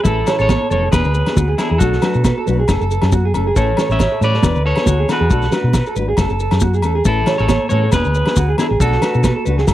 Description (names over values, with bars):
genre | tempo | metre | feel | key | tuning
highlife guitar band | 137 BPM | 4/4 | swing 54% on 16ths | A major | A4 = 437 Hz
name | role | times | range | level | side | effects
electric guitar at the edge of break-up | melody | 0.0-9.7 s | E4 to E5 | -21 LUFS | left 1 dB | none
nylon-string guitar | accompaniment | 0.0-9.7 s | E3 to G#4 | -23 LUFS | left 7 dB | none
electric guitar through a small old amp | arpeggios | 0.0-9.7 s | F#4 to C#5 | -21 LUFS | right 4 dB | tape echo
maracas | percussion | 0.0-9.7 s | none | -31 LUFS | left 7 dB | none
hollow-body short-scale fingered electric bass | bass | 0.1-9.7 s | E1 to B2 | -17 LUFS | equal | none
warm soul drum kit | drums | 0.1-9.7 s | kick drum, snare drum | -18 LUFS | equal | none
congas | percussion | 0.1-9.7 s | none | -24 LUFS | right 5 dB | none
agogo bells | percussion | 0.3-9.7 s | none | -28 LUFS | left 3 dB | none
room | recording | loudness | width
little or no reverb | dry, close 1970s-style studio recording | -13 LUFS | side -13 dB against mid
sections
0.1-9.7 A section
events
none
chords
0.1 Amaj7; 0.9 E7; 1.8 Bm7; 2.7 F#madd9; 3.6 Amaj7; 4.4 E7; 5.3 Bm7; 6.2 F#madd9; 7.1 Amaj7; 7.9 E7; 8.8 Bm7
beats
| 0.06 0.50 0.93 1.37 | 1.81 2.25 2.69 3.12 | 3.56 4.00 4.44 4.87 | 5.31 5.75 6.18 6.62 | 7.06 7.50 7.93 8.37 | 8.81 9.24 9.68